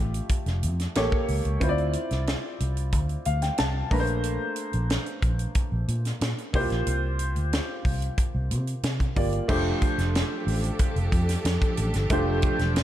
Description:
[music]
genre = polished 1980s jazz-funk pop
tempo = 91 BPM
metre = 4/4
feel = straight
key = F major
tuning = A4 = 440 Hz
[part]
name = clear concert grand piano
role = accompaniment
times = 0.0-12.8 s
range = A3 to Bb5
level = -30 LUFS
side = equal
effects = wide subtle chorus
[part]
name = vintage muted fingered electric bass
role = bass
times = 0.0-12.8 s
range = E1 to C3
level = -26 LUFS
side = equal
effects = none
[part]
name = tight funk drum kit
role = drums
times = 0.1-12.8 s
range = crash cymbal, hi-hat, kick drum, snare drum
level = -27 LUFS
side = equal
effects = none
[part]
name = clear studio string section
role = sustained chords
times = 9.5-12.8 s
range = F3 to A4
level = -32 LUFS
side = right 1 dB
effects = none
[sound]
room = studio ambience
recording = dark, warm production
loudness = -23 LUFS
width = side -12 dB against mid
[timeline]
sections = 0.0-9.5 A section; 9.5-12.8 B section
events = grand piano fill 2.9-4.2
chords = 0.0 Fmaj9; 1.0 A7b9; 1.6 Dm9; 3.9 Bbmaj9; 6.5 C7sus4; 9.5 F69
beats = 0.30 0.95 | 1.61 2.27 2.93 3.58 | 4.24 4.90 5.55 6.21 | 6.87 7.52 8.18 8.83 | 9.49 10.14 10.80 11.45 | 12.10 12.76

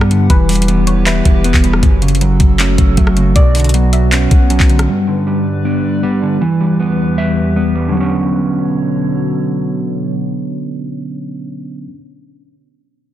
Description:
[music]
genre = hip hop, trap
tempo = 157 BPM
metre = 4/4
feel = half-time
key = B minor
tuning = A4 = 440 Hz
[part]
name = mellow electric guitar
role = accompaniment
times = 0.0-12.0 s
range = F#2 to E5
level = -17 LUFS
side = right 3 dB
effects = none
[part]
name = warbly tape-like pad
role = sustained chords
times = 0.0-11.8 s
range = E2 to F#5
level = -23 LUFS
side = left 2 dB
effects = chorus, built-in reverb, phaser
[part]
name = mellow tine electric piano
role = arpeggios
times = 0.0-12.0 s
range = E3 to D4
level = -19 LUFS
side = left 3 dB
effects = medium stereo tremolo, ping-pong delay
[part]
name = warm 808-style bass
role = bass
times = 0.0-4.9 s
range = E1 to G2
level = -14 LUFS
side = equal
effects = none
[part]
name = trap drum kit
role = drums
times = 0.0-4.9 s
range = handclaps, hi-hat, kick drum, rim click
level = -12 LUFS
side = equal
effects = none
[part]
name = soft round pluck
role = second line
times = 0.3-4.5 s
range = B4 to F#5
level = -25 LUFS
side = left 1 dB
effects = chorus, ping-pong delay
[sound]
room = light reverb, digital ambience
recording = dense, heavily limited modern master, low-pass filter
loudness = -11 LUFS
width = side -12 dB against mid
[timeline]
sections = 0.0-4.9 A section; 4.9-7.9 B section; 7.9-11.0 C section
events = filter sweep 4.9-7.9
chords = 0.3 Em; 1.8 F#m; 3.4 Bmadd9; 4.9 G; 6.4 Em; 7.9 Bmadd9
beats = | 0.30 0.68 1.06 1.45 | 1.83 2.21 2.59 2.98 | 3.36 3.74 4.12 4.50 | 4.89 5.27 5.65 6.03 | 6.41 6.80 7.18 7.56 | 7.94 8.32 8.71 9.09 | 9.47 9.85 10.24 10.62

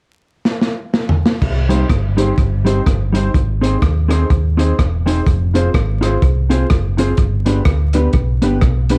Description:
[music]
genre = ska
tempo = 125 BPM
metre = 4/4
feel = swing 59% on 8ths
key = C minor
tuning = A4 = 440 Hz
[part]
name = crunchy breakbeat drum kit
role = drums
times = 0.5-9.0 s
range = crash cymbal, hi-hat, kick drum, rim click, snare drum, toms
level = -20 LUFS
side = equal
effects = tape echo
[part]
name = fingered electric bass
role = bass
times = 1.4-9.0 s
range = E1 to Eb2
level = -19 LUFS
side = equal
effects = tube saturation
[part]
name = mellow electric guitar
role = accompaniment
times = 1.7-9.0 s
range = G3 to C5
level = -22 LUFS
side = equal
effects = none
[part]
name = dark upright piano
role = stabs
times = 1.7-9.0 s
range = B3 to C5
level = -24 LUFS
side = equal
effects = tape echo
[sound]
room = light reverb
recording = dark, warm production, vinyl crackle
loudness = -16 LUFS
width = mono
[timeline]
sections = 0.0-1.4 A section; 1.4-9.0 B section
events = drum fill 0.5-1.4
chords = 0.0 N.C.; 1.4 Cm; 3.3 Ab; 5.3 Fm; 7.2 G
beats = 0.45 0.93 | 1.41 1.89 2.37 2.85 | 3.33 3.81 4.29 4.78 | 5.26 5.74 6.22 6.70 | 7.18 7.66 8.14 8.62

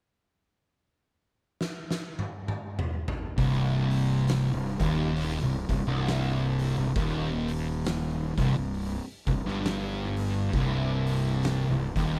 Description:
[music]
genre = stoner and doom metal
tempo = 67 BPM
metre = 4/4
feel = swing 59% on 8ths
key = C minor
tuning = A4 = 440 Hz
[part]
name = oversized low-tuned drum kit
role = drums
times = 1.6-12.1 s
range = hi-hat, kick drum, snare drum, toms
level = -36 LUFS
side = equal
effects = none
[part]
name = thick fuzz guitar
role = riff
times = 3.4-12.2 s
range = C2 to G2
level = -29 LUFS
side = equal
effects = distortion
[part]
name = fuzz fingered electric bass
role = bass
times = 3.4-12.2 s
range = C1 to G1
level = -35 LUFS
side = equal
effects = overdrive
[sound]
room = light reverb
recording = none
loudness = -28 LUFS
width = mono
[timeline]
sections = 0.0-3.4 A section; 3.4-12.2 B section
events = drum fill 1.6-3.4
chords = 0.0 N.C.; 3.4 Cm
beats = 0.69 1.58 2.48 | 3.37 4.27 5.16 6.06 | 6.95 7.85 8.74 9.64 | 10.53 11.43

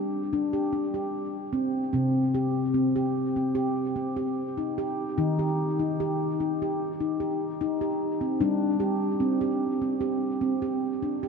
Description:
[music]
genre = world meditative, meditative tuned percussion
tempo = 74 BPM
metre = 4/4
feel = straight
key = C hirajoshi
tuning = A4 = 441 Hz
[part]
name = handpan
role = solo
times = 0.0-11.3 s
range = C3 to G4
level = -25 LUFS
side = equal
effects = diffuse ambient delay
[sound]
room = wet huge ambient reverb, RT60 7.7 s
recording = in a vast, echoing space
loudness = -25 LUFS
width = side -5 dB against mid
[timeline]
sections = 0.0-1.9 A section; 1.9-11.3 B section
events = none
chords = 0.0 G5; 1.9 C5; 5.2 Eb; 8.4 G5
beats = 0.32 1.13 | 1.94 2.75 3.56 4.37 | 5.17 5.98 6.79 7.60 | 8.40 9.21 10.02 10.82

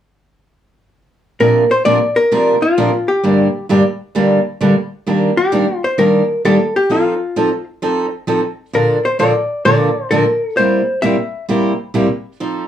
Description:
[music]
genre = country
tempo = 131 BPM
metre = 4/4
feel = swing 67% on 8ths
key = Bb major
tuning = A4 = 441 Hz
[part]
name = hollow-body jazz guitar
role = melody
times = 1.4-11.5 s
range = F4 to E5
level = -15 LUFS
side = left 2 dB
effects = none
[part]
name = picked steel-string acoustic guitar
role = accompaniment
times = 1.4-12.6 s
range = G2 to Bb4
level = -14 LUFS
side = right 1 dB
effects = none
[sound]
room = wet studio ambience, RT60 0.5 s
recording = band playing live in one room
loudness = -13 LUFS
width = side -10 dB against mid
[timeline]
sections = 1.4-12.7 A section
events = none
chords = 1.4 Bbadd9; 3.2 Gm; 5.1 Ebmaj7; 6.9 F7; 8.7 Bbmaj7; 10.6 C7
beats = | 1.40 1.86 2.32 2.77 | 3.23 3.69 4.15 4.61 | 5.07 5.53 5.99 6.45 | 6.90 7.36 7.82 8.28 | 8.74 9.20 9.65 10.11 | 10.57 11.03 11.49 11.95 | 12.40

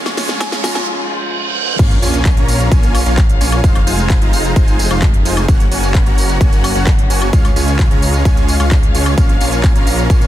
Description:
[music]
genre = EDM, festival progressive house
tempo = 130 BPM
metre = 4/4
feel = straight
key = Bb minor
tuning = A4 = 445 Hz
[part]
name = felt-muted upright piano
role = accompaniment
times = 0.0-1.8 s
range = F3 to F4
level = -27 LUFS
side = right 2 dB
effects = sidechain pumping, ping-pong delay
[part]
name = dark chamber string section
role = sustained chords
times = 0.0-10.3 s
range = Db3 to Gb5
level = -24 LUFS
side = left 2 dB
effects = sidechain pumping
[part]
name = supersaw chords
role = riff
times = 0.0-10.3 s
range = Ab3 to Bb5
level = -20 LUFS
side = right 1 dB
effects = sidechain pumping, ping-pong delay
[part]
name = riser, reverse cymbal and sub drop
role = sound effects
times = 0.0-3.6 s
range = none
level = -22 LUFS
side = right 2 dB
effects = none
[part]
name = big-room dance drum kit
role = drums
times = 0.1-10.3 s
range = crash cymbal, handclaps, hi-hat, snare drum, tambourine, woodblock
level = -22 LUFS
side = equal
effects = none
[part]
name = buzzing marimba with hard mallets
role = melody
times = 0.4-0.9 s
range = Ab5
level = -26 LUFS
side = left 1 dB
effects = ping-pong delay
[part]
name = electronic kick drum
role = drums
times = 0.4-10.2 s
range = none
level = -12 LUFS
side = equal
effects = high-pass filter on kick
[part]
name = detuned saw bass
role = bass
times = 1.8-10.3 s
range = F1 to Db2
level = -17 LUFS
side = equal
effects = sidechain pumping
[sound]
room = digital ambience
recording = dense, heavily limited modern master, high-pass filter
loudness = -11 LUFS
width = side -13 dB against mid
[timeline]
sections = 0.0-1.8 A section; 1.8-10.3 B section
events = build-up 0.0-1.8; drum fill 0.0-0.9; riser 0.0-0.9; reverse cymbal 0.9-1.8; drop 1.8-10.3; impact 1.8-3.6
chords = 0.0 Db; 1.8 Bbm; 3.6 Fm7; 5.5 Gb; 7.3 Db; 9.2 Bbm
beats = 0.41 0.87 1.33 | 1.79 2.25 2.71 3.18 | 3.64 4.10 4.56 5.02 | 5.48 5.95 6.41 6.87 | 7.33 7.79 8.25 8.71 | 9.18 9.64 10.10

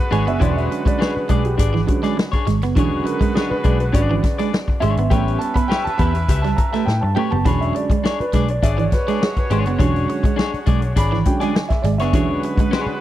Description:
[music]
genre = funk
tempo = 102 BPM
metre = 4/4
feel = straight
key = E mixolydian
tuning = A4 = 440 Hz
[part]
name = clear horn section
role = second line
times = 0.0-13.0 s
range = G#3 to E5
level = -29 LUFS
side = right 1 dB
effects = none
[part]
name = electric guitar at the edge of break-up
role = accompaniment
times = 0.0-12.9 s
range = D4 to E5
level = -26 LUFS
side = left 8 dB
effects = spring reverb
[part]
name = electric guitar at the edge of break-up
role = riff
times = 0.1-12.7 s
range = E3 to B3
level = -24 LUFS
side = right 8 dB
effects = none
[part]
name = dark upright piano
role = stabs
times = 0.1-13.0 s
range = C#3 to B5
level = -23 LUFS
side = right 3 dB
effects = tape echo
[part]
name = vintage muted picked electric bass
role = bass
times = 0.1-12.9 s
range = E1 to A2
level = -20 LUFS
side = left 1 dB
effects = none
[part]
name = swinging big-band drum kit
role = drums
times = 0.1-12.9 s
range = hi-hat, kick drum, snare drum, toms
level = -20 LUFS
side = left 1 dB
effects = none
[sound]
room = studio reverb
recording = dry, close 1970s-style studio recording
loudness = -16 LUFS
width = side -13 dB against mid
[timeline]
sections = 0.0-13.0 A section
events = upright piano solo 0.0-13.0; drum fill 6.9-7.5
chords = 0.0 E13; 5.1 A9; 7.5 E13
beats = | 0.42 1.00 1.59 2.18 | 2.76 3.35 3.94 4.52 | 5.11 5.70 6.28 6.87 | 7.45 8.04 8.63 9.21 | 9.80 10.38 10.97 11.55 | 12.14 12.72

